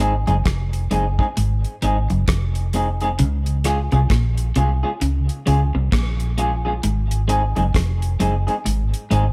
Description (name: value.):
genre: roots reggae.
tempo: 66 BPM.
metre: 4/4.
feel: swing 61% on 16ths.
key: Db major.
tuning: A4 = 440 Hz.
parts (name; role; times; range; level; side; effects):
electric guitar at the edge of break-up; accompaniment; 0.0-9.2 s; Ab3 to Ab4; -26 LUFS; equal; tape echo.
vintage muted fingered electric bass; bass; 0.0-9.3 s; F1 to Db2; -22 LUFS; equal; none.
damped 70s drum kit; drums; 0.0-9.3 s; hi-hat, kick drum, rim click; -26 LUFS; equal; none.
clean electric guitar; riff; 0.3-9.3 s; F2 to Db3; -27 LUFS; equal; none.
room: light reverb, small room ambience.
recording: none.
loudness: -20 LUFS.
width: mono.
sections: 0.0-9.3 A section.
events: none.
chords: 0.0 Ab; 3.2 Db; 6.8 Ab.